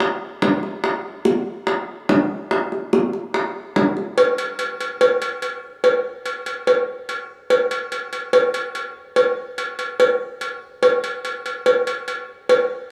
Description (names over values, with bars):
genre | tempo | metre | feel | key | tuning
latin | 144 BPM | 4/4 | straight | none | none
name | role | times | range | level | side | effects
bongos and cowbell | percussion | 0.0-12.7 s | none | -21 LUFS | equal | none
room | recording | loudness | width
moderate plate reverb, RT60 3.4 s | small room ambience | -21 LUFS | mono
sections
0.0-4.2 A section; 4.2-12.9 B section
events
none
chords
none